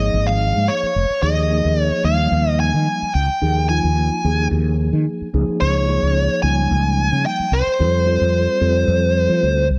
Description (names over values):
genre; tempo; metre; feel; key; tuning
electric jazz fusion; 110 BPM; 4/4; straight; Eb mixolydian; A4 = 437 Hz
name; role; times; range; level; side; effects
bluesy overdriven lead guitar; melody; 0.0-9.7 s; C5 to Ab5; -22 LUFS; equal; distortion
mellow tine electric piano; accompaniment; 0.0-9.6 s; F3 to A4; -26 LUFS; equal; none
mellow fretless electric bass; bass; 0.0-9.8 s; F1 to F3; -21 LUFS; equal; lush chorus
room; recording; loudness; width
light reverb, digital ambience; dark, warm production, lossy compression artefacts; -18 LUFS; mono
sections
0.0-9.8 A section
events
none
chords
0.0 Ab5; 1.2 Ebsus4; 5.3 Dbadd9; 7.8 F69